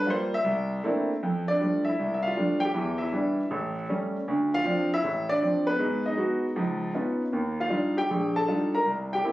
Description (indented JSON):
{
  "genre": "solo jazz",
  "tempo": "157 BPM",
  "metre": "4/4",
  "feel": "swing 66% on 8ths",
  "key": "F major",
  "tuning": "A4 = 440 Hz",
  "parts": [
    { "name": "warm concert grand piano", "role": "solo", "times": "0.0-9.3 s", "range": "A1 to Bb5", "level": "-24 LUFS", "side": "equal", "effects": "none" }
  ],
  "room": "moderate club reverb, RT60 0.5 s",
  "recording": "recorded on a phone in the room, studio reverb",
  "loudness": "-24 LUFS",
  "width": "side -16 dB against mid",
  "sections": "0.0-1.2 A section; 1.2-9.3 B section",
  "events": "grand piano solo 0.0-1.2",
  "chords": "0.5 C13; 1.2 F69; 2.7 Em7; 3.5 A7; 4.3 Dm7; 5.8 Abm7; 6.6 Db9; 7.3 Ebmaj9"
}